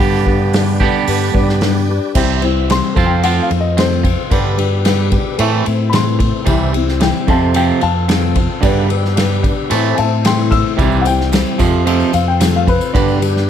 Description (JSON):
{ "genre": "folk rock and heartland rock", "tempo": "111 BPM", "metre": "4/4", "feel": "straight", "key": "C major", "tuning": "A4 = 440 Hz", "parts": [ { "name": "dark upright piano", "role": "second line", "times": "0.0-13.2 s", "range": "B3 to E6", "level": "-20 LUFS", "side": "left 6 dB", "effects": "none" }, { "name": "dark concert grand piano", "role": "accompaniment", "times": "0.0-13.5 s", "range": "D4 to F5", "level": "-27 LUFS", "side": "right 5 dB", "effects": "none" }, { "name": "picked steel-string acoustic guitar", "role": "accompaniment", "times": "0.0-13.5 s", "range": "A2 to C5", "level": "-20 LUFS", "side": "left 9 dB", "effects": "none" }, { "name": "tonewheel organ", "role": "sustained chords", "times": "0.0-13.5 s", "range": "B3 to D5", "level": "-28 LUFS", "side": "equal", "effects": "slow rotary speaker, overdrive, chorus vibrato" }, { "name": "twangy electric guitar", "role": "riff", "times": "0.0-13.5 s", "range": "F2 to G4", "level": "-20 LUFS", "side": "right 9 dB", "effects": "none" }, { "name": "fingered electric bass", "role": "bass", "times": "0.0-13.5 s", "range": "C2 to A2", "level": "-17 LUFS", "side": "equal", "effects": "none" }, { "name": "unplugged drum kit", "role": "drums", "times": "0.0-13.4 s", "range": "crash cymbal, hi-hat, kick drum, ride cymbal, snare drum", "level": "-18 LUFS", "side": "equal", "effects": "none" }, { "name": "tambourine", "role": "percussion", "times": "10.8-13.3 s", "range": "none", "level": "-34 LUFS", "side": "left 10 dB", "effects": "none" } ], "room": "small room ambience", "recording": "none", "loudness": "-12 LUFS", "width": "side -9 dB against mid", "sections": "0.0-2.2 A section; 2.2-13.5 B section", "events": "upright piano solo 2.2-13.5", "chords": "0.0 G; 2.2 C; 3.0 F; 4.3 G; 5.4 Am; 6.5 C; 7.3 F; 8.6 G; 9.7 Am; 10.8 C; 11.6 F; 13.0 G" }